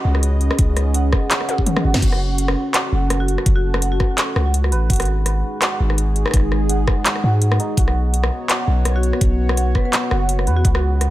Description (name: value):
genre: half-time drum and bass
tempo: 167 BPM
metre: 4/4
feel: swing 55% on 16ths, half-time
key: unclear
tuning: A4 = 439 Hz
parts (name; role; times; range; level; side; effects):
- dark analog pad; sustained chords; 0.0-11.1 s; G#3 to D#5; -26 LUFS; equal; chorus, sidechain pumping
- santur; arpeggios; 0.0-11.1 s; D#4 to F#5; -28 LUFS; right 3 dB; digital delay
- long sustained 808-style bass; bass; 0.0-11.1 s; F#1 to G#2; -18 LUFS; equal; tube saturation
- drum and bass drum kit; drums; 0.1-11.1 s; crash cymbal, handclaps, hi-hat, rim click, snare drum, toms; -22 LUFS; left 1 dB; none
- electronic kick drum; drums; 0.6-10.7 s; none; -18 LUFS; equal; none
- marimba with medium hard mallets; melody; 3.2-4.2, 9.0-10.7 s; F#4 to B4; -29 LUFS; left 1 dB; digital delay
room: light reverb, digital ambience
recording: none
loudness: -16 LUFS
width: side -15 dB against mid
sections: 0.0-11.1 A section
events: drum fill 1.5-2.0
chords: 0.0 C#5; 2.0 F#m; 4.9 G#5; 7.8 B5